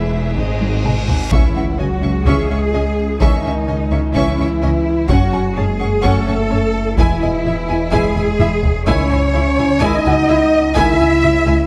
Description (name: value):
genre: cinematic, hybrid orchestral and electronic film score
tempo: 127 BPM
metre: 4/4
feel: straight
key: C# minor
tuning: A4 = 443 Hz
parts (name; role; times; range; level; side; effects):
- warm symphonic violin section; melody; 0.0-11.6 s; D#5 to C#6; -33 LUFS; equal; none
- rich studio violin section; second line; 0.0-11.5 s; G#4 to G#5; -28 LUFS; equal; none
- warm studio viola section; accompaniment; 0.0-11.6 s; G#3 to E4; -26 LUFS; equal; none
- dark French horn section; sustained chords; 0.0-11.7 s; D#3 to E4; -22 LUFS; equal; none
- phased detuned saw bass; bass; 0.0-11.7 s; E1 to C#2; -24 LUFS; equal; phaser
- rich symphonic cello section; bass; 0.0-11.7 s; E2 to E5; -23 LUFS; equal; none
- warm symphonic double bass section; bass; 0.0-11.5 s; E1 to F#2; -24 LUFS; equal; none
- reverse cymbal and impact; sound effects; 0.0-3.2 s; none; -29 LUFS; equal; none
- taiko ensemble; drums; 0.4-11.2 s; none; -21 LUFS; equal; none
- felt-muted upright piano; texture; 0.9-11.7 s; F#4 to G#5; -31 LUFS; equal; tape echo
- clear trombone section; sustained chords; 1.3-10.9 s; D#3 to C#4; -28 LUFS; equal; none
room: light reverb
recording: close, detailed microphones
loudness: -16 LUFS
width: mono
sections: 0.0-1.3 A section; 1.3-11.7 A section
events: reverse cymbal 0.0-1.3; drum fill 0.6-1.3, 8.2-8.9; impact 1.3-3.2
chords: 0.4 G#; 1.3 C#madd9; 5.1 F#m; 7.0 E; 8.9 C#madd9